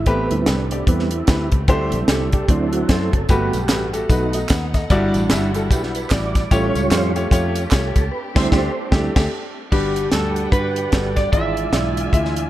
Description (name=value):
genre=uptempo gospel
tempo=149 BPM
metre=4/4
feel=swing 60% on 8ths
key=G major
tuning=A4 = 440 Hz
part: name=mellow tonewheel organ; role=sustained chords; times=0.0-12.5 s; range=D3 to D5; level=-25 LUFS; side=right 3 dB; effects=fast rotary speaker, chorus vibrato
part: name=warm studio string section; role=sustained chords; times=0.0-12.5 s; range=F#3 to G#5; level=-32 LUFS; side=right 1 dB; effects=none
part: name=fingered electric bass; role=bass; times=0.0-12.5 s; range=F#1 to G2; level=-23 LUFS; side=equal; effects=none
part: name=warm grand piano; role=accompaniment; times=0.1-12.4 s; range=G2 to F#5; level=-23 LUFS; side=left 1 dB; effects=none
part: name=tight funk drum kit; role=drums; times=0.1-12.4 s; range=crash cymbal, hi-hat, kick drum, snare drum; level=-19 LUFS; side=equal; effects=none
part: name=tambourine and handclaps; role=percussion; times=3.3-8.0 s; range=none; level=-32 LUFS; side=right 3 dB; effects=none
part: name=electric slide guitar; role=melody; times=9.7-12.5 s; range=G4 to E5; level=-23 LUFS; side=equal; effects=none
room=light reverb, small room ambience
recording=dark, warm production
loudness=-16 LUFS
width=side -14 dB against mid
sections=0.0-9.7 A section; 9.7-12.5 B section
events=tonewheel organ solo 0.0-9.7; band accent 8.1-9.7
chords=0.1 Am9; 1.7 D7sus4; 2.5 D7; 3.3 Gmaj9; 4.1 B7; 4.9 Em9/G; 6.5 A7alt; 8.1 D7sus4; 9.7 Gmaj7; 11.3 E7b9/G#